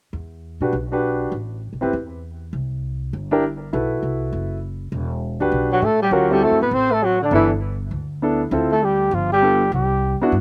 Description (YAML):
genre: jazz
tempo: 200 BPM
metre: 4/4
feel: swing 63% on 8ths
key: E minor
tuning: A4 = 438 Hz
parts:
  - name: upright bass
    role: bass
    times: 0.1-10.4 s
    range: E1 to B2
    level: -28 LUFS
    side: equal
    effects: none
  - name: warm concert grand piano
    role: accompaniment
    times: 0.6-10.3 s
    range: B3 to B4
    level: -23 LUFS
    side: equal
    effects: none
  - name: warm flugelhorn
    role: melody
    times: 5.7-10.2 s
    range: D4 to C5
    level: -21 LUFS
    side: equal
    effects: none
  - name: warm alto saxophone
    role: second line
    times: 5.7-10.2 s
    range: D3 to C4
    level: -24 LUFS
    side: equal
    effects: slapback echo
room: little or no reverb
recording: recorded outdoors, with no room sound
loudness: -21 LUFS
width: mono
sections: 0.1-4.9 A section; 4.9-10.4 B section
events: none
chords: 0.1 Em9; 1.3 A7sus2; 2.5 C5; 3.7 B7sus4; 4.9 Em9; 6.1 D7; 7.3 G69; 8.5 Dm7; 9.1 G9; 9.7 Cmaj9#11